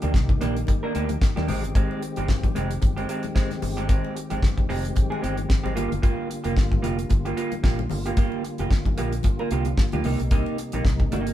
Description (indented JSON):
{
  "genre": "disco",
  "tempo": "112 BPM",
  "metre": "4/4",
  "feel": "swing 56% on 16ths",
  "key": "unclear",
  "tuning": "A4 = 440 Hz",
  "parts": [
    { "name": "electric guitar through a small old amp", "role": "accompaniment", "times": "0.0-11.3 s", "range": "Ab3 to Bb4", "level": "-29 LUFS", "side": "right 3 dB", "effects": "none" },
    { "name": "percussive tonewheel organ", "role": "sustained chords", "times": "0.0-11.3 s", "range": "C3 to G4", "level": "-32 LUFS", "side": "left 1 dB", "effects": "chorus vibrato, slow rotary speaker" },
    { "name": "fingered electric bass", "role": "bass", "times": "0.0-11.3 s", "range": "F1 to Eb2", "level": "-28 LUFS", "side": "equal", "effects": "none" },
    { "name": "damped 70s drum kit", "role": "drums", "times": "0.0-11.3 s", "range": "hi-hat, kick drum, snare drum", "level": "-22 LUFS", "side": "equal", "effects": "none" },
    { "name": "congas", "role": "percussion", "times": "0.0-11.3 s", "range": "none", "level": "-36 LUFS", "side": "left 8 dB", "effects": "none" }
  ],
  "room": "light reverb",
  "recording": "band playing live in one room",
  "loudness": "-21 LUFS",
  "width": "side -12 dB against mid",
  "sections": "0.0-11.3 A section",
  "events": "none",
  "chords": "0.0 Ebmaj7; 1.5 Abmaj7; 5.8 Gm7; 10.0 Cm7"
}